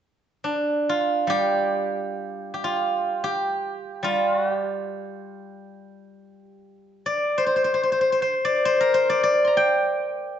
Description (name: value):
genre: chinese traditional, Chinese solo plucked strings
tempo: free time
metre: none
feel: none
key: G yu mode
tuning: A4 = 441 Hz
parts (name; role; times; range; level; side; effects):
- steel-string zither; solo; 0.4-10.4 s; G3 to C6; -21 LUFS; equal; slapback echo
room: moderate scoring stage reverb, RT60 1.6 s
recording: nothing above 8.0 kHz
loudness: -20 LUFS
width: side -9 dB against mid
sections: 0.0-10.4 A section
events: none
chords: none